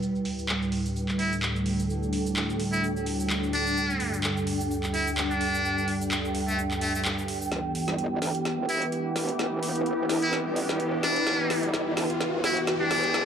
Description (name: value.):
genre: bass house.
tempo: 128 BPM.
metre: 4/4.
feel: swing 55% on 16ths.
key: E minor.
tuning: A4 = 435 Hz.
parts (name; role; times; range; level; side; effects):
sweeping resonant pad; sustained chords; 0.0-13.2 s; D2 to G4; -30 LUFS; right 1 dB; chorus.
garage drum kit; drums; 0.0-13.2 s; cabasa, handclaps, hi-hat, snare drum; -32 LUFS; equal; overdrive, low-pass filter on perc, low-pass filter on hats, low-pass filter on snare.
ethereal airy pad; texture; 0.0-13.2 s; D4 to G5; -32 LUFS; equal; ensemble chorus, built-in reverb.
trumpet with metal mute; melody; 1.2-13.2 s; A3 to E4; -29 LUFS; left 1 dB; tape echo.
metallic wobble bass; bass; 7.5-13.2 s; E1 to D2; -34 LUFS; equal; chorus, tube saturation, high-pass filter.
riser; sound effects; 9.0-13.2 s; none; -33 LUFS; equal; none.
room: moderate plate reverb, RT60 2.0 s.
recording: dark, warm production.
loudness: -25 LUFS.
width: side -8 dB against mid.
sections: 0.0-7.5 A section; 7.5-13.2 B section.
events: filter sweep on analog synth pad 0.0-7.5; build-up 7.5-13.2; drum fill 7.5-13.2; riser 9.0-13.2.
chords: 0.0 Dsus4; 7.5 Em.